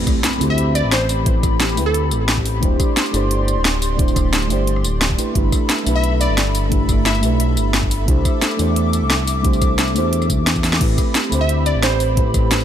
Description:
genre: liquid drum and bass.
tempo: 176 BPM.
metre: 4/4.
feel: straight.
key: A minor.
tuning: A4 = 440 Hz.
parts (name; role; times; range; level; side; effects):
mellow FM electric piano; accompaniment; 0.0-12.6 s; A3 to C5; -22 LUFS; right 2 dB; chorus, phaser, digital delay.
airy breathy pad; sustained chords; 0.0-12.6 s; C4 to D6; -26 LUFS; left 3 dB; chorus, sidechain pumping.
smooth gliding synth bass; bass; 0.0-12.6 s; D1 to E2; -19 LUFS; equal; tube saturation.
impact; sound effects; 0.0-1.3 s; none; -31 LUFS; equal; none.
drum and bass drum kit; drums; 0.1-12.6 s; crash cymbal, hi-hat, rim click, snare drum, tambourine; -20 LUFS; equal; overdrive.
electronic kick drum; drums; 0.1-12.4 s; none; -18 LUFS; equal; overdrive.
glassy wavetable pluck; melody; 0.5-2.2, 6.0-7.5, 11.4-12.3 s; A4 to E5; -24 LUFS; right 1 dB; chorus, digital delay.
room: little or no reverb.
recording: none.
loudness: -15 LUFS.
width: side -10 dB against mid.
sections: 0.0-12.6 A section.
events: impact 0.0-1.3; drum fill 10.6.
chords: 0.0 Am9; 2.6 D7sus4; 5.2 G69; 8.1 C69; 10.8 Am9.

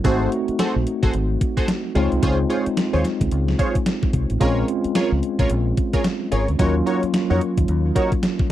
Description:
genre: R&B, new jack swing.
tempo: 110 BPM.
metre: 4/4.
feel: swing 60% on 16ths.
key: Bb minor.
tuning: A4 = 440 Hz.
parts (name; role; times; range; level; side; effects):
tine electric piano; accompaniment; 0.0-8.5 s; Gb3 to Gb4; -23 LUFS; equal; medium stereo tremolo.
funky polysynth comp; stabs; 0.0-8.1 s; Eb4 to Db5; -25 LUFS; right 1 dB; chorus, tape echo.
deep dub fingered electric bass; bass; 0.0-7.9 s; Ab1 to F2; -21 LUFS; equal; none.
gated 80s digital drum machine; drums; 0.0-8.5 s; hi-hat, kick drum, snare drum; -22 LUFS; equal; gated reverb, gated reverb snare, overdrive.
room: little or no reverb.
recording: dry, close 1970s-style studio recording.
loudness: -18 LUFS.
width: side -13 dB against mid.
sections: 0.0-8.5 A section.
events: none.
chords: 0.0 Ab7b9; 2.0 Dbmaj7; 4.4 Bbm7; 6.6 Ebm7.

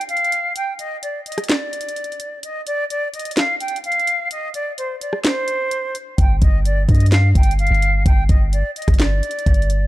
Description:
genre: hip hop, trap.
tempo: 128 BPM.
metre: 4/4.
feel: half-time.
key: unclear.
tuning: A4 = 438 Hz.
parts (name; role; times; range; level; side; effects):
concert flute; melody; 0.0-9.9 s; C5 to G5; -22 LUFS; equal; none.
trap drum kit; drums; 0.0-9.8 s; handclaps, hi-hat, kick drum, rim click, snare drum; -18 LUFS; equal; none.
long sustained 808-style bass; bass; 6.2-9.9 s; G1 to G2; -16 LUFS; equal; none.
room: little or no reverb.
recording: dark, warm production.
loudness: -16 LUFS.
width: side -16 dB against mid.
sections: 0.0-9.9 A section.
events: break 0.0-6.2.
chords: 0.0 N.C.; 6.2 G5.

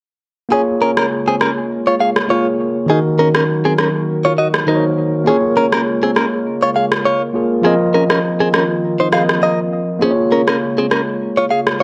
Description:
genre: afrobeats.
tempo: 101 BPM.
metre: 4/4.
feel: swing 55% on 16ths.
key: Bb minor.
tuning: A4 = 441 Hz.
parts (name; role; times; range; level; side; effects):
tine electric piano; accompaniment; 0.5-11.8 s; Eb3 to Eb5; -20 LUFS; equal; none.
hollow soft pad; sustained chords; 0.8-11.8 s; Db3 to Bb4; -28 LUFS; equal; chorus.
direct-recorded clean electric guitar; riff; 0.5-11.8 s; C4 to F5; -19 LUFS; equal; analog delay.
electronic rim click; drums; 1.0-11.8 s; none; -20 LUFS; equal; none.
room: light reverb, digital ambience.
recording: dry, gritty hardware recording.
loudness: -16 LUFS.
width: mono.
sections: 0.5-11.8 A section.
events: none.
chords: 0.5 Bbm7; 2.9 Ebm; 5.3 Bbm7; 7.6 F7sus4; 10.0 Bbm7.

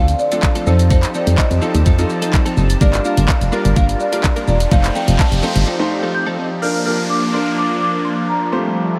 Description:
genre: dance-pop.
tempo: 126 BPM.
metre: 4/4.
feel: straight.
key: Bb major.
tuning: A4 = 440 Hz.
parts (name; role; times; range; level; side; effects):
marimba with medium mallets; melody; 0.0-9.0 s; C5 to G6; -24 LUFS; equal; tape echo.
clear concert grand piano; accompaniment; 0.0-8.8 s; F3 to C5; -26 LUFS; equal; subtle chorus.
filtered supersaw swell; sustained chords; 0.0-9.0 s; D3 to A5; -25 LUFS; equal; phaser, sidechain pumping.
direct-recorded clean electric guitar; riff; 0.0-6.5 s; F3 to Bb4; -29 LUFS; equal; analog chorus.
solid FM bass; bass; 0.0-5.6 s; E1 to F2; -17 LUFS; equal; sidechain pumping.
pop drum kit; drums; 0.1-5.7 s; handclaps, hi-hat, kick drum, shaker; -20 LUFS; equal; none.
riser and downlifter; sound effects; 4.1-9.0 s; none; -30 LUFS; equal; none.
room: moderate huge ambient reverb, RT60 8.1 s.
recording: dreamy mix soaked in reverb.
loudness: -16 LUFS.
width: mono.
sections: 0.0-6.6 A section; 6.6-9.0 B section.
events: riser 4.1-6.6; break 5.7-6.6.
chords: 0.0 Dm7; 0.7 F7; 2.8 Gm7; 4.7 F7; 6.6 Bb.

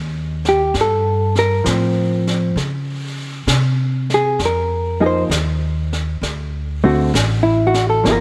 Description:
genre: jazz ballad.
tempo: 66 BPM.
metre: 4/4.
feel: swing 67% on 8ths.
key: unclear.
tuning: A4 = 440 Hz.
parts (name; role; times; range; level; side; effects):
upright bass; bass; 0.0-8.2 s; G1 to Db3; -22 LUFS; equal; none.
jazz brush drum kit; drums; 0.4-8.2 s; brushed snare drum, hi-hat, snare drum; -27 LUFS; equal; none.
hollow-body jazz guitar; accompaniment; 0.5-8.2 s; D3 to C5; -18 LUFS; equal; none.
room: light reverb.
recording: none.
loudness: -18 LUFS.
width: mono.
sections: 0.0-8.2 A section.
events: none.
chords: 0.0 N.C.; 0.7 G9sus4; 2.6 Abadd11; 4.4 F7(no3); 6.2 D7.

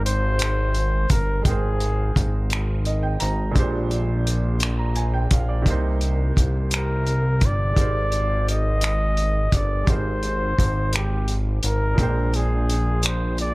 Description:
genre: slow six-eight R&B.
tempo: 57 BPM (dotted quarters).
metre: 6/8.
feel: straight.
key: Ab lydian.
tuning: A4 = 440 Hz.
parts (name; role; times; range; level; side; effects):
breathy flugelhorn; melody; 0.0-2.5, 6.8-13.5 s; G4 to Eb5; -26 LUFS; equal; none.
clear grand piano; accompaniment; 0.0-13.5 s; Bb2 to Bb5; -30 LUFS; right 3 dB; none.
fat analog bass; bass; 0.0-13.5 s; G1 to C2; -22 LUFS; equal; none.
cloth-damped thuddy drum kit; drums; 0.1-13.5 s; finger snaps, hi-hat, kick drum; -22 LUFS; equal; none.
room: studio ambience.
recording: none.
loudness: -19 LUFS.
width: side -22 dB against mid.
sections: 0.0-13.5 A section.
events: grand piano fill 2.5-3.6.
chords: 0.0 Abmaj9; 3.6 Bb13; 5.7 Cm7; 7.8 Abmaj9; 12.0 Bb13.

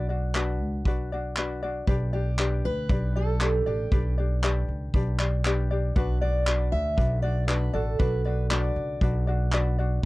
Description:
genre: acoustic pop.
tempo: 118 BPM.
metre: 4/4.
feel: straight.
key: unclear.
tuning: A4 = 441 Hz.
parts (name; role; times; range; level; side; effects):
fingerpicked steel-string acoustic guitar; melody; 0.0-9.2 s; G4 to E5; -31 LUFS; right 1 dB; none.
ukulele; accompaniment; 0.0-10.0 s; D4 to D5; -32 LUFS; left 3 dB; none.
upright bass; bass; 0.0-10.0 s; A1 to D2; -26 LUFS; equal; none.
vintage brush drum kit; drums; 0.3-9.6 s; handclaps, kick drum; -26 LUFS; equal; none.
room: little or no reverb.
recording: dry, close 1970s-style studio recording.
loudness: -23 LUFS.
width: side -20 dB against mid.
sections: 0.0-10.1 A section.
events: none.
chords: 0.0 Bm; 1.9 G; 6.0 Bm.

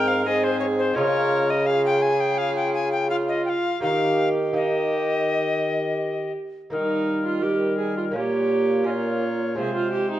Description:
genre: classical, renaissance-style consort dance.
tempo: 84 BPM.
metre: 4/4.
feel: straight.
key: Eb mixolydian.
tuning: A4 = 439 Hz.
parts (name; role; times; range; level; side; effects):
alto recorder; melody; 0.0-10.2 s; Bb4 to Ab5; -26 LUFS; left 4 dB; none.
warm viola; second line; 0.0-10.2 s; Eb4 to Bb4; -26 LUFS; right 3 dB; none.
clear trombone; accompaniment; 0.0-10.2 s; G3 to G4; -30 LUFS; left 2 dB; none.
lute; accompaniment; 0.0-10.2 s; Ab2 to F4; -30 LUFS; right 1 dB; none.
dark bassoon; bass; 0.0-10.2 s; Ab2 to Eb3; -26 LUFS; equal; none.
room: wet recital hall reverb, RT60 1.5 s.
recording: dark, warm production.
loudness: -20 LUFS.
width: side -12 dB against mid.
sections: 0.0-6.7 A section; 6.7-10.2 B section.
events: none.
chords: 0.0 Ab; 1.0 Db; 3.8 Eb; 8.2 Bbm; 9.6 Fm/C.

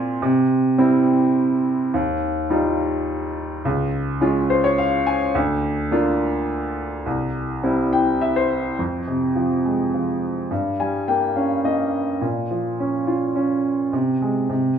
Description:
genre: folk.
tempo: 105 BPM.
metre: 3/4.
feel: straight.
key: F minor.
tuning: A4 = 440 Hz.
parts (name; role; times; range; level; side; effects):
clear upright piano; solo; 0.0-14.8 s; C2 to Ab5; -19 LUFS; equal; none.
room: wet large studio reverb, RT60 1.1 s.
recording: band playing live in one room.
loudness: -19 LUFS.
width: side -8 dB against mid.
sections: 0.0-8.8 A section; 8.8-14.8 B section.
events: none.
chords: 0.2 C; 1.9 Ebadd9; 3.6 Db; 5.3 Bb/D; 7.1 C; 8.8 Fm; 10.5 Gdim; 12.2 Bbm; 13.9 Ab/C.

